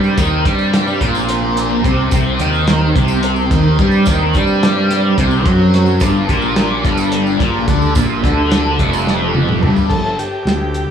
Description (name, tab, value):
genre	psychedelic rock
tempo	216 BPM (eighths)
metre	7/8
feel	straight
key	G mixolydian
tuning	A4 = 437 Hz
part	bright tonewheel organ	sustained chords	0.0-9.9 s	C3 to G5	-24 LUFS	right 4 dB	slow rotary speaker, overdrive
part	thick fuzz guitar	riff	0.0-9.9 s	F2 to G3	-15 LUFS	left 1 dB	distortion, phaser
part	fuzz fingered electric bass	bass	0.0-10.9 s	F1 to G2	-17 LUFS	equal	overdrive
part	tambourine	percussion	0.0-9.8 s	none	-35 LUFS	right 10 dB	none
part	cloth-damped thuddy drum kit	drums	0.2-10.9 s	crash cymbal, hi-hat, kick drum, snare drum, toms	-18 LUFS	equal	none
part	overdriven combo organ	melody	9.9-10.9 s	G4 to A4	-20 LUFS	left 2 dB	analog delay
room	light reverb, small room reverb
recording	none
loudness	-12 LUFS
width	side -8 dB against mid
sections	0.0-9.9 A section; 9.9-10.9 B section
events	drum fill 9.1-9.9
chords	0.0 C5; 6.0 G; 9.9 G5